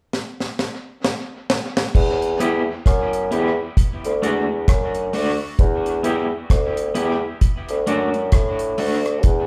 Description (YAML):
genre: roots reggae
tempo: 66 BPM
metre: 4/4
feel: swing 59% on 16ths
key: E minor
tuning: A4 = 441 Hz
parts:
  - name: deep reggae drum kit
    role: drums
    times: 0.1-9.5 s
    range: crash cymbal, hi-hat, kick drum, rim click, snare drum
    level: -22 LUFS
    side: equal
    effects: dub echo
  - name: mellow bassoon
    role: bass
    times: 2.0-9.5 s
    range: D2 to A2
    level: -24 LUFS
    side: equal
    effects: none
  - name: electric guitar at the edge of break-up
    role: accompaniment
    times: 2.4-9.0 s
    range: A3 to G4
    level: -27 LUFS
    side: equal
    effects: tremolo, dub echo
room: moderate large studio reverb, RT60 0.9 s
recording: band playing live in one room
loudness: -21 LUFS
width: mono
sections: 0.0-1.9 A section; 1.9-9.5 B section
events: drum fill 0.1-1.9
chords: 0.0 N.C.; 1.9 Em; 3.8 D; 5.6 Em; 7.4 D